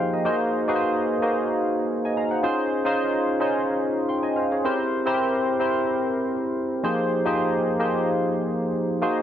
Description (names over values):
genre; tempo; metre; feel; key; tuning
pop; 110 BPM; 4/4; swing 54% on 16ths; F minor; A4 = 440 Hz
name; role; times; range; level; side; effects
barky tine electric piano; solo; 0.0-9.2 s; F3 to C6; -21 LUFS; equal; overdrive, analog chorus
room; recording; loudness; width
light reverb; none; -21 LUFS; side -10 dB against mid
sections
0.0-9.2 A section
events
none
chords
0.3 Ab7; 2.4 Dbmaj7; 4.6 C7; 6.8 Fm11